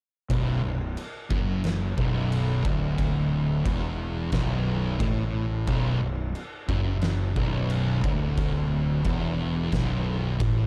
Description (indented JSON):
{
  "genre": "stoner and doom metal",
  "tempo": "89 BPM",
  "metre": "4/4",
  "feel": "straight",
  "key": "B minor",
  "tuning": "A4 = 440 Hz",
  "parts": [
    { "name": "thick fuzz guitar", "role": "riff", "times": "0.3-10.7 s", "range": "B1 to A2", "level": "-31 LUFS", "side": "equal", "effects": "distortion" },
    { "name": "thick fuzz guitar", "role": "riff", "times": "0.3-10.7 s", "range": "B1 to A2", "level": "-32 LUFS", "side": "equal", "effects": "distortion" },
    { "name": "fuzz fingered electric bass", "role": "bass", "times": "0.3-10.7 s", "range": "B0 to A1", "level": "-33 LUFS", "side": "equal", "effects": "overdrive" },
    { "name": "oversized low-tuned drum kit", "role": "drums", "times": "0.3-10.6 s", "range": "crash cymbal, kick drum, snare drum", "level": "-33 LUFS", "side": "equal", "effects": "none" }
  ],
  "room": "light reverb",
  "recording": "dark, warm production",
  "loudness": "-26 LUFS",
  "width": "mono",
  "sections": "0.3-10.7 A section",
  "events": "none",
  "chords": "0.3 Bm",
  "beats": "| 0.29 0.97 1.64 2.31 | 2.99 3.66 4.33 5.01 | 5.68 6.36 7.03 7.70 | 8.38 9.05 9.73 10.40"
}